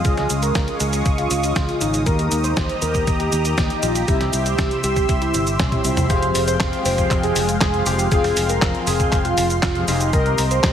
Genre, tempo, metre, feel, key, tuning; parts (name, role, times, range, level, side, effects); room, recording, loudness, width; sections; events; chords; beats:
italo disco; 119 BPM; 4/4; straight; F minor; A4 = 441 Hz
wide unison lead; melody; 0.0-10.7 s; C4 to C5; -23 LUFS; right 1 dB; wide subtle chorus, tape echo
lush unison pad; sustained chords; 0.0-10.7 s; Ab3 to E6; -26 LUFS; right 1 dB; chorus, phaser
analog synth brass; stabs; 0.0-10.7 s; C3 to G5; -25 LUFS; left 3 dB; chorus, phaser
fingered electric bass; bass; 0.0-10.7 s; F1 to Eb2; -24 LUFS; equal
detuned 8-bit digital drum machine; drums; 0.0-10.7 s; cabasa, handclaps, hi-hat, snare drum, toms; -24 LUFS; equal; studio reverb
electronic kick drum; drums; 0.0-10.7 s; -22 LUFS; equal; studio reverb
light reverb; heavily compressed radio sound, multiband compression; -17 LUFS; side -9 dB against mid
0.0-6.1 A section; 6.1-10.7 B section
filter sweep on analog polysynth 0.0-6.1; drum fill 5.6-6.1
0.0 Dbadd9; 2.1 Eb; 4.1 C; 6.1 Fmadd9; 10.1 Cm7
| 0.05 0.55 1.06 1.56 | 2.06 2.57 3.07 3.58 | 4.08 4.59 5.09 5.59 | 6.10 6.60 7.11 7.61 | 8.12 8.62 9.12 9.63 | 10.13 10.64